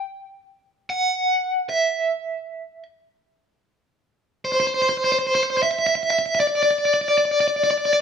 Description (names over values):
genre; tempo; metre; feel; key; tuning
rock; 76 BPM; 4/4; straight; unclear; A4 = 440 Hz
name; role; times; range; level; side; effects
overdriven semi-hollow guitar; melody; 0.0-8.0 s; C5 to G5; -19 LUFS; equal; tremolo
room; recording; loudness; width
moderate large studio reverb, RT60 1.2 s; band playing live in one room; -18 LUFS; side -7 dB against mid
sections
0.0-4.0 A section; 4.0-8.0 B section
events
none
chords
none